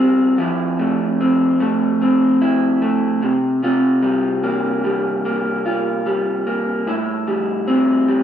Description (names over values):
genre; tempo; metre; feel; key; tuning
indie pop; 74 BPM; 4/4; swing 55% on 16ths; unclear; A4 = 440 Hz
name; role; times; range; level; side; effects
electric guitar through a small old amp; solo; 0.0-8.2 s; A2 to F4; -15 LUFS; equal; warbly pitch drift
room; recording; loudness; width
wet stone room reverb, RT60 1.4 s; band playing live in one room; -16 LUFS; side -9 dB against mid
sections
0.0-8.2 A section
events
none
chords
0.4 Fmaj7; 3.2 C7sus4; 6.9 Am7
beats
| 0.39 1.20 2.01 2.82 | 3.63 4.44 5.25 6.06 | 6.87 7.68